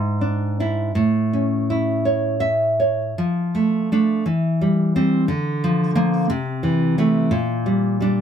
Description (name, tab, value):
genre	romantic piece for solo classical guitar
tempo	53-59 BPM (dotted quarters)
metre	6/8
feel	rubato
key	unclear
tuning	A4 = 440 Hz
part	nylon-string guitar	solo	0.0-8.2 s	G#2 to E5	-18 LUFS	equal	none
room	light reverb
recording	close, detailed microphones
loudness	-18 LUFS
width	side -8 dB against mid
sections	0.0-8.2 A section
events	none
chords	0.0 E7/G#; 0.9 A; 3.2 Dm/F; 4.2 C/E; 5.3 Bb/D; 6.3 Am/C; 7.3 Gm/Bb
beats	| 0.92 2.04 | 3.16 4.25 | 5.30 6.32 | 7.34